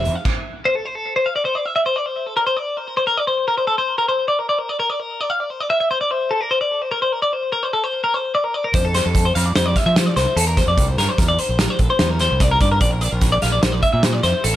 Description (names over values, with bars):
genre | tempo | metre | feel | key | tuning
math rock and midwest emo | 148 BPM | 5/4 | straight | F major | A4 = 440 Hz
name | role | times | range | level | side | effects
twelve-string electric guitar | arpeggios | 0.0-14.5 s | A4 to F5 | -19 LUFS | left 2 dB | digital delay
growling fingered electric bass | bass | 0.0-0.1, 8.7-14.6 s | A1 to F3 | -20 LUFS | equal | overdrive
loose indie drum kit | drums | 0.1-0.3, 8.7-14.5 s | crash cymbal, hi-hat, kick drum, snare drum | -19 LUFS | right 1 dB | none
room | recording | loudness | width
light reverb | none | -16 LUFS | side -13 dB against mid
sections
0.7-14.6 A section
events
stop 0.3-0.7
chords
0.0 Fmaj7(no3); 0.7 F (rootless); 2.7 Csus2; 4.7 Bb; 6.7 Amadd11 (rootless); 8.7 Fmaj7; 10.8 C9; 12.8 Bbmaj7